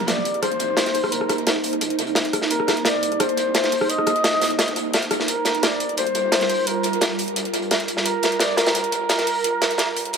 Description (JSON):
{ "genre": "liquid drum and bass", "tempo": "173 BPM", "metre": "4/4", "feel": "straight", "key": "C minor", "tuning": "A4 = 442 Hz", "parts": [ { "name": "mellow flugelhorn", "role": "melody", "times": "0.0-10.2 s", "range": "Bb4 to Eb5", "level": "-23 LUFS", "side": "equal", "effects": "analog delay" }, { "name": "ethereal airy pad", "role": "sustained chords", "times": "0.0-10.2 s", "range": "G3 to C5", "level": "-26 LUFS", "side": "right 2 dB", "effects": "ensemble chorus, built-in reverb" }, { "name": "dark detuned saw bass", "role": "bass", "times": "0.0-10.2 s", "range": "G1 to D2", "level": "-39 LUFS", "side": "equal", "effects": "none" }, { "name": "pop drum kit", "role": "drums", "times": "0.0-10.2 s", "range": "hi-hat, rim click", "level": "-26 LUFS", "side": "left 1 dB", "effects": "overdrive, analog delay" }, { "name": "crunchy breakbeat drum kit", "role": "drums", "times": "0.1-10.2 s", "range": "hi-hat, snare drum", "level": "-23 LUFS", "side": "equal", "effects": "high-pass filter on hats, high-pass filter on snare, high-pass filter on room, analog delay" } ], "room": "wet spring reverb, RT60 1.2 s, studio ambience", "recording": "echo-heavy mix, high-pass filter", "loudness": "-18 LUFS", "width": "side -6 dB against mid", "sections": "0.0-10.2 A section", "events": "build-up 0.0-10.2", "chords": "0.0 Cm7; 5.3 Gm7", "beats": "0.08 0.43 0.77 | 1.12 1.47 1.81 2.16 | 2.51 2.85 3.20 3.55 | 3.90 4.24 4.59 4.93 | 5.28 5.63 5.98 6.32 | 6.67 7.02 7.36 7.71 | 8.06 8.40 8.75 9.10 | 9.44 9.79 10.14" }